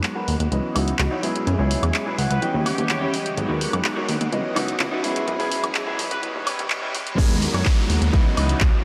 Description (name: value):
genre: filtered disco house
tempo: 126 BPM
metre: 4/4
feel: straight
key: G# minor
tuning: A4 = 439 Hz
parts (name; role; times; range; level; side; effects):
- warm grand piano; accompaniment; 0.0-8.8 s; E3 to D#5; -30 LUFS; equal; phaser, sidechain pumping, low-pass filter
- phased string machine; sustained chords; 0.0-8.8 s; F#4 to F#5; -37 LUFS; equal; ensemble chorus, phaser, sidechain pumping, low-pass filter
- punchy analog drum machine; drums; 0.0-8.7 s; crash cymbal, handclaps, hi-hat, woodblock; -30 LUFS; equal; sidechain pumping on hats, sidechain pumping on perc, sidechain pumping on cymbals
- riser and downlifter; sound effects; 1.3-8.8 s; none; -35 LUFS; equal; none
- electric guitar through a small old amp; riff; 0.2-8.6 s; B3 to G5; -31 LUFS; equal; vintage 12-bit sampler grit, sidechain pumping, low-pass filter
- plucky analog bass; bass; 0.3-8.7 s; G#1 to F#2; -26 LUFS; equal; sidechain pumping, low-pass filter
- bright horn section; melody; 2.3-6.3 s; G4 to B4; -37 LUFS; equal; none
- electronic kick drum; drums; 7.2-8.7 s; none; -21 LUFS; equal; none
room: wet huge ambient reverb, RT60 8.8 s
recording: dreamy mix soaked in reverb, high-pass filter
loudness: -22 LUFS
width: mono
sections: 0.0-7.2 A section; 7.2-8.8 B section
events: build-up 0.0-7.2; filter sweep 0.0-7.2; clean electric guitar fill 1.9-3.4; drop 7.2-8.8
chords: 0.0 G#m9; 0.5 C#m11; 1.2 F#9sus4; 2.4 D#7b9b13; 3.4 G#m9; 4.3 C#m11; 5.0 F#9sus4; 6.2 D#7b9b13; 7.2 G#m9; 8.1 C#m11